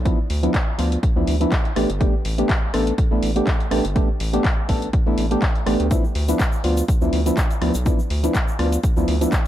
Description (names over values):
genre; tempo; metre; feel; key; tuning
deep house; 123 BPM; 4/4; swing 55% on 16ths; D dorian; A4 = 440 Hz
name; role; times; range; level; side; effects
round analog bass; bass; 0.0-9.3 s; G1 to D2; -22 LUFS; equal; tube saturation, sidechain pumping
percussive organ stab; stabs; 0.1-9.3 s; F3 to A4; -22 LUFS; equal; chorus, sidechain pumping, analog delay
deep house drum kit; drums; 0.1-9.4 s; handclaps, hi-hat, rim click; -28 LUFS; left 1 dB; none
electronic kick drum; drums; 0.1-9.4 s; none; -20 LUFS; equal; none
egg shaker; percussion; 5.9-9.4 s; none; -37 LUFS; left 3 dB; none
room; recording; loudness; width
digital ambience; none; -18 LUFS; side -12 dB against mid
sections
0.0-9.5 A section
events
none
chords
0.0 Dm69; 1.8 A9sus4; 5.9 Dm69